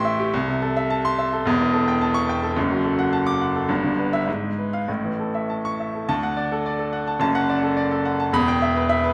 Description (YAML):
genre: classical, virtuoso piano study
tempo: 107 BPM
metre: 2/4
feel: rubato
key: D major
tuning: A4 = 440 Hz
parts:
  - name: clear baby grand piano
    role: solo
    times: 0.0-9.1 s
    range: E1 to D6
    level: -22 LUFS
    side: equal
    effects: none
room: wet recital hall reverb, RT60 1.7 s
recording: none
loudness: -22 LUFS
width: mono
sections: 0.0-6.1 A section; 6.1-9.1 B section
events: none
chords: 0.3 Am/C; 1.5 A7/E; 2.6 D/F#; 3.7 Em7/G; 4.3 G#m6; 4.9 A; 6.1 D; 7.2 D/F#; 8.3 Em